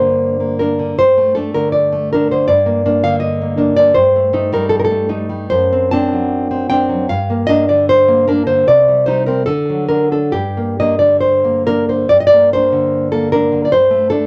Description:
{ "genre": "romantic piece for solo classical guitar", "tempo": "66-82 BPM", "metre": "2/4", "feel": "rubato", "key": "G minor", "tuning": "A4 = 440 Hz", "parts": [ { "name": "nylon-string guitar", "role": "solo", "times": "0.0-14.3 s", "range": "F#2 to A5", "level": "-14 LUFS", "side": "equal", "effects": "none" } ], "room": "moderate studio reverb, RT60 0.5 s", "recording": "none", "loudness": "-14 LUFS", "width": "mono", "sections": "0.0-12.1 A section; 12.1-14.3 A section", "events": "none", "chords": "0.0 Gm; 1.0 D5/G; 2.5 Gm; 4.0 Am7b5/G; 5.5 D7/F#; 7.1 Gm; 8.7 Cm; 9.5 D; 10.3 Gm; 13.7 D5/G" }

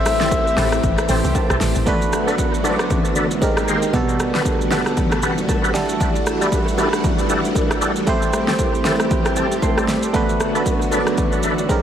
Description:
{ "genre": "amapiano", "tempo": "116 BPM", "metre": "4/4", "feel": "swing 58% on 16ths", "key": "unclear", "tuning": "A4 = 440 Hz", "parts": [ { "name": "breathy flute-like synth lead", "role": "melody", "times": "0.0-1.4 s", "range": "E5", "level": "-23 LUFS", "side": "left 4 dB", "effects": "chorus, tape echo" }, { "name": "barking FM electric piano", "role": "accompaniment", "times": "0.0-11.8 s", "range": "B2 to C6", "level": "-22 LUFS", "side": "right 3 dB", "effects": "chorus, tape echo" }, { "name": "string machine, violins", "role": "sustained chords", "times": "0.0-11.8 s", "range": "D3 to G4", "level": "-24 LUFS", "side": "left 1 dB", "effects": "ensemble chorus, sidechain pumping" }, { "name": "deep log drum bass", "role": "bass", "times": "0.0-1.9 s", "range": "G1 to C2", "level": "-22 LUFS", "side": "equal", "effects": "none" }, { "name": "deep house drum kit", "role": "drums", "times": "0.1-11.8 s", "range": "hi-hat, kick drum, rim click, shaker, snare drum", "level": "-21 LUFS", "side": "equal", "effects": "overdrive, tape echo" }, { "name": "bongos and congas", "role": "percussion", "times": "0.1-11.8 s", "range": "none", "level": "-28 LUFS", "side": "left 3 dB", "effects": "tape echo" }, { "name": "overdriven tonewheel organ", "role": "stabs", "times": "0.2-11.5 s", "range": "B3 to B#4", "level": "-26 LUFS", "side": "left 1 dB", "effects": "chorus vibrato, fast rotary speaker, tape echo" } ], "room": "light reverb", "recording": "echo-heavy mix", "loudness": "-16 LUFS", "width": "side -9 dB against mid", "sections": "0.0-1.9 A section; 1.9-11.8 B section", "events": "drop 0.0-1.9; FM electric piano fill 0.8-1.9, 5.2-6.0, 8.6-10.1", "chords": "0.0 Am7; 1.9 Bm7; 3.4 G#maj9; 3.9 Gmaj9/B; 5.7 Em11; 8.1 Am7; 10.1 Bm7" }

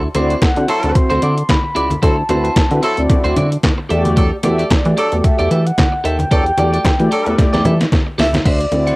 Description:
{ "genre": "early-eighties boogie funk", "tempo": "112 BPM", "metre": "4/4", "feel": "swing 56% on 16ths", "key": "E minor", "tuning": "A4 = 440 Hz", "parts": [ { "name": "mellow synth brass", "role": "accompaniment", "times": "0.0-9.0 s", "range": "A3 to E5", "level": "-19 LUFS", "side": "equal", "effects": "chorus, cassette tape" }, { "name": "clean electric guitar", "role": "riff", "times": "0.0-9.0 s", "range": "E4 to F#5", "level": "-23 LUFS", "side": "right 2 dB", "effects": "wide subtle chorus, cassette tape" }, { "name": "chorused synth bass", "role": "bass", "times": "0.0-8.9 s", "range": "C#2 to E3", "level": "-17 LUFS", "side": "equal", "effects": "none" }, { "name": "detuned 8-bit digital drum machine", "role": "drums", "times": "0.1-9.0 s", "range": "crash cymbal, handclaps, hi-hat, kick drum, snare drum", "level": "-15 LUFS", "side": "equal", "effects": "overdrive, cassette tape" }, { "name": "congas", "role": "percussion", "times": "0.1-8.9 s", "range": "none", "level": "-23 LUFS", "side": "left 1 dB", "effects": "none" }, { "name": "mellow horn-like synth lead", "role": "melody", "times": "0.4-9.0 s", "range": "D5 to C6", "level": "-21 LUFS", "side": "equal", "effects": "chorus, cassette tape" }, { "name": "warm horn section", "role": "second line", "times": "0.7-7.3 s", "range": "F#3 to A4", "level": "-21 LUFS", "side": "left 1 dB", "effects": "cassette tape" } ], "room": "light reverb, digital ambience", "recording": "home recording on cassette", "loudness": "-12 LUFS", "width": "side -22 dB against mid", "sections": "0.0-8.5 A section", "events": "drum fill 7.4-8.5", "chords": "0.0 D9; 3.9 Em11; 8.5 D9" }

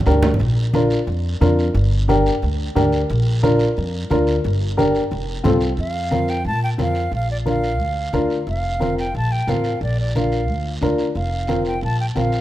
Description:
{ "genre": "latin, cumbia", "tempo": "179 BPM", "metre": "4/4", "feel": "straight", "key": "Bb major", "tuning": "A4 = 439 Hz", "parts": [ { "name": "congas", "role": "percussion", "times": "0.0-12.3 s", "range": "none", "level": "-24 LUFS", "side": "equal", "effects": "none" }, { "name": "dark upright piano", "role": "accompaniment", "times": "0.1-12.4 s", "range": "C4 to Bb4", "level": "-21 LUFS", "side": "left 1 dB", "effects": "none" }, { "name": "upright bass", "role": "bass", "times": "0.1-12.4 s", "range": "F1 to Bb2", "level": "-21 LUFS", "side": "equal", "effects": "none" }, { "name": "guiro", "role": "percussion", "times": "0.1-12.4 s", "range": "none", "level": "-37 LUFS", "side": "right 3 dB", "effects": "none" }, { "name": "reedy concert flute", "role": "melody", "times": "5.8-12.4 s", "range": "D5 to A5", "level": "-25 LUFS", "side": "right 1 dB", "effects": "none" } ], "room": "light reverb, small room ambience", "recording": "rough home demo mix, faint mains hum", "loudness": "-17 LUFS", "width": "side -14 dB against mid", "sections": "0.0-5.8 A section; 5.8-12.4 B section", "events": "drum fill 0.0-0.4", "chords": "0.4 Bb; 1.8 Gm; 3.1 Bb; 4.4 Gm; 5.1 F; 5.8 Fsus4; 7.1 Bb; 8.5 Fsus4; 9.8 Bb; 11.2 Fsus4" }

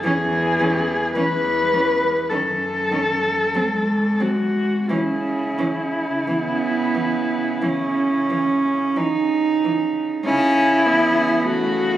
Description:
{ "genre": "classical, lyrical piece for cello ensemble", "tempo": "43-54 BPM", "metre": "4/4", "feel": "rubato", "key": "C# minor", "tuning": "A4 = 440 Hz", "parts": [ { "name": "dark cello", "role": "melody", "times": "0.0-12.0 s", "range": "E4 to B4", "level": "-21 LUFS", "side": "left 1 dB", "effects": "none" }, { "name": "clear cello", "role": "accompaniment", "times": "0.0-12.0 s", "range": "D#3 to C#4", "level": "-25 LUFS", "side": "left 1 dB", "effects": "none" }, { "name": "rich cello", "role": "bass", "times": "0.0-12.0 s", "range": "E2 to C#3", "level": "-24 LUFS", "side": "equal", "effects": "none" }, { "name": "warm cello", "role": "second line", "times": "0.1-12.0 s", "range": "E3 to D#4", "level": "-24 LUFS", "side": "right 5 dB", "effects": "none" } ], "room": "moderate recital hall reverb, RT60 1.8 s", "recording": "recorded on a phone in the room, club reverb", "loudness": "-18 LUFS", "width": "side -12 dB against mid", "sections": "0.0-10.3 A section; 10.3-12.0 A section", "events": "none", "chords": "0.0 C#m/E (rootless); 2.3 D#dim/F# (rootless); 3.6 G#7(no3); 4.9 C#m" }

